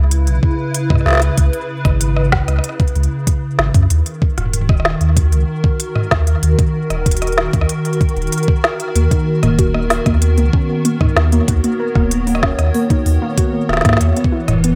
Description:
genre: IDM.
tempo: 95 BPM.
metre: 4/4.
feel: straight.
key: unclear.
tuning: A4 = 440 Hz.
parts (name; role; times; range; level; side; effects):
hollow soft pad; sustained chords; 0.1-14.8 s; C#3 to C#5; -23 LUFS; equal; ensemble chorus, sidechain pumping.
warm sub bass; bass; 0.0-14.8 s; D#1 to G#2; -18 LUFS; equal; tube saturation.
organic electronic drum kit; drums; 0.1-14.8 s; hi-hat, rim click, snare drum, toms; -21 LUFS; equal; digital delay.
electronic kick drum; drums; 0.4-14.4 s; none; -18 LUFS; equal; none.
warbly dusty pluck; arpeggios; 9.0-14.7 s; A#3 to A#4; -22 LUFS; equal; analog chorus, delay.
room: digital ambience.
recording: none.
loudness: -15 LUFS.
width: mono.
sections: 0.0-14.8 A section.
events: none.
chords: 0.0 C#m7; 3.9 D#m; 9.0 Bmaj9/D#; 14.0 Esus2.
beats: 0.11 0.74 | 1.38 2.01 2.64 3.27 | 3.90 4.53 5.17 5.80 | 6.43 7.06 7.69 8.32 | 8.96 9.59 10.22 10.85 | 11.48 12.11 12.74 13.38 | 14.01 14.64.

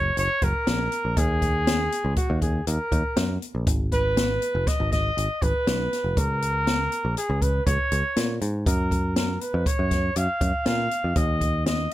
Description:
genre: progressive instrumental, band music in an uneven meter.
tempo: 120 BPM.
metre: 5/4.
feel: straight.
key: unclear.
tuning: A4 = 438 Hz.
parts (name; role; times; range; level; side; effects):
mellow trumpet; melody; 0.0-11.9 s; Gb4 to F5; -26 LUFS; right 1 dB; plate reverb.
picked electric bass; bass; 0.0-11.9 s; F1 to Bb2; -26 LUFS; equal; none.
open jazz drum kit; drums; 0.2-11.9 s; hi-hat, kick drum, snare drum; -26 LUFS; equal; none.
room: light reverb.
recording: none.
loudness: -22 LUFS.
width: side -14 dB against mid.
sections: 0.0-11.9 A section.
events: none.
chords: 0.0 Gb; 1.2 Eb5; 3.7 Abm; 6.2 Db5; 8.7 Gbmaj7; 11.2 N.C..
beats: 0.17 0.67 | 1.17 1.67 2.17 2.67 3.17 | 3.67 4.17 4.67 5.17 5.67 | 6.17 6.67 7.17 7.67 8.16 | 8.66 9.16 9.66 10.16 10.66 | 11.16 11.66.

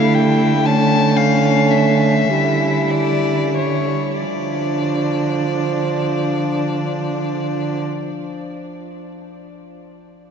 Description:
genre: classical, slow romantic movement for string quartet.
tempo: 29-40 BPM (dotted quarters).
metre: 12/8.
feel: rubato.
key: D minor.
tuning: A4 = 440 Hz.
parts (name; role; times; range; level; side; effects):
rich violin; melody; 0.0-7.8 s; C#5 to A5; -22 LUFS; left 5 dB; none.
rich violin; second line; 0.0-7.8 s; C#4 to E4; -23 LUFS; left 1 dB; none.
dark viola; accompaniment; 0.0-7.8 s; F3 to A3; -21 LUFS; right 1 dB; none.
dark cello; bass; 0.0-7.8 s; D3; -21 LUFS; right 6 dB; none.
room: wet huge ambient reverb, RT60 7.4 s.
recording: in a vast, echoing space, nothing above 7.8 kHz.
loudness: -15 LUFS.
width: side -7 dB against mid.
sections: 0.0-4.2 A section; 4.2-10.3 B section.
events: slowing down 0.0-4.2.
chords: 0.0 A7/D; 4.2 Dm.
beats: 0.64 2.30 | 4.25 6.10.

